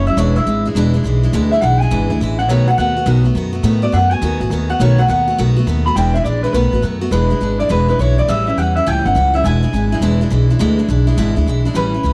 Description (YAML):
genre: rockabilly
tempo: 207 BPM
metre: 4/4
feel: swing 64% on 8ths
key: E mixolydian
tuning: A4 = 440 Hz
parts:
  - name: electric guitar through a small old amp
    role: melody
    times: 0.0-12.1 s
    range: B4 to B5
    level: -20 LUFS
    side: equal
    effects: subtle chorus, tape echo
  - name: picked steel-string acoustic guitar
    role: accompaniment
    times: 0.0-12.1 s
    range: E2 to F#4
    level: -23 LUFS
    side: equal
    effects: none
  - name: upright bass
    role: bass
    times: 0.0-12.1 s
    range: E1 to A2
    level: -17 LUFS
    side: equal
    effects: none
room: studio ambience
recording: none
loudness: -15 LUFS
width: mono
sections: 0.0-7.1 A section; 7.1-12.1 B section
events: clean electric guitar solo 0.0-7.1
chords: 0.2 E7; 2.5 B7; 6.0 E7; 6.5 B7; 7.1 E7; 8.3 A7; 9.4 E7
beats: | 0.18 0.47 0.76 1.05 | 1.34 1.62 1.91 2.20 | 2.49 2.78 3.07 3.36 | 3.65 3.94 4.22 4.51 | 4.80 5.09 5.38 5.67 | 5.96 6.25 6.54 6.83 | 7.12 7.41 7.70 7.99 | 8.28 8.57 8.86 9.15 | 9.44 9.73 10.02 10.31 | 10.60 10.89 11.18 11.47 | 11.76 12.05